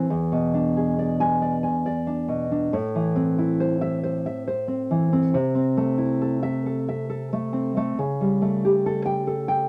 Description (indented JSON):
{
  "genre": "romantic piece for solo classical guitar",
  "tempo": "46 BPM (dotted quarters)",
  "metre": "6/8",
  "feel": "rubato",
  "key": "A minor",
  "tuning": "A4 = 441 Hz",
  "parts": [
    { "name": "nylon-string guitar", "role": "solo", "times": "0.0-9.7 s", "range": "E2 to G#5", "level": "-24 LUFS", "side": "equal", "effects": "none" }
  ],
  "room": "moderate club reverb, RT60 0.5 s",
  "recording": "none",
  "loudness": "-24 LUFS",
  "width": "mono",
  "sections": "0.0-9.7 A section",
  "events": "none",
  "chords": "0.1 E7; 2.7 Am; 5.3 Am/C; 8.0 A7/C#",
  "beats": "| 0.08 1.42 | 2.74 4.04 | 5.35 6.65 | 7.97 9.26"
}